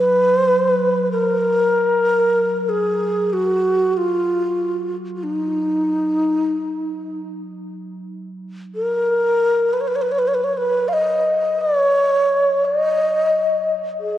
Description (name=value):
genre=world meditative, free-time meditation music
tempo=free time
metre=none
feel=none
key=unclear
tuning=A4 = 441 Hz
part: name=breathy mellow xiao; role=melody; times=0.0-14.2 s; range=D#4 to E#5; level=-17 LUFS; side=equal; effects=none
part: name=quartz singing bowl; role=texture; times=0.0-0.5 s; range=F#3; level=-31 LUFS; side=right 2 dB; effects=none
room=wet huge ambient reverb, RT60 4.2 s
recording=worn, warbling old tape, cassette tape, warbly pitch drift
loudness=-16 LUFS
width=side -12 dB against mid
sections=0.0-14.2 A section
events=none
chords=none